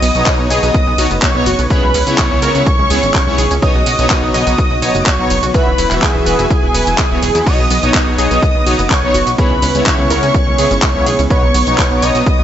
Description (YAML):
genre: progressive house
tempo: 125 BPM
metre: 4/4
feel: straight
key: B major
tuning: A4 = 440 Hz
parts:
  - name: wide unison lead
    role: melody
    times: 0.0-12.4 s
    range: G#4 to D#5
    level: -18 LUFS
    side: equal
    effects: analog chorus, sidechain pumping, digital delay
  - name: rich studio violin section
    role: second line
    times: 0.0-12.4 s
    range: G#5 to D#6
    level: -23 LUFS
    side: right 2 dB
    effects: sidechain pumping, digital delay
  - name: airy breathy pad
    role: sustained chords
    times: 0.0-12.4 s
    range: C#3 to F#4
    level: -24 LUFS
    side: right 1 dB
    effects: chorus, sidechain pumping
  - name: analog pluck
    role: arpeggios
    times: 0.0-12.4 s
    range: B3 to D#5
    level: -21 LUFS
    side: right 1 dB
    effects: chorus, cassette tape, sidechain pumping, digital delay
  - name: plucky analog bass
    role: bass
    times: 0.0-12.4 s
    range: E1 to E2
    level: -19 LUFS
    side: equal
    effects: sidechain pumping
  - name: pop drum kit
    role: drums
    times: 0.0-12.4 s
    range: crash cymbal, handclaps, hi-hat, ride cymbal, shaker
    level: -19 LUFS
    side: equal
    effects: overdrive
  - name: soft supersaw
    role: stabs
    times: 0.1-12.2 s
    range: B2 to E5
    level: -19 LUFS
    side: left 1 dB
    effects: phaser, vintage 12-bit sampler grit, sidechain pumping, digital delay
  - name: electronic kick drum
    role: drums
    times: 0.3-12.4 s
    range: none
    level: -16 LUFS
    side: equal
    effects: none
room: light reverb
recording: nothing above 7.9 kHz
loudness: -10 LUFS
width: side -10 dB against mid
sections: 0.0-12.4 A section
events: none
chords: 0.0 Badd9; 1.7 C#m7; 3.6 Badd9; 5.5 Esus2; 7.5 Badd9; 9.4 C#m7; 11.3 Badd9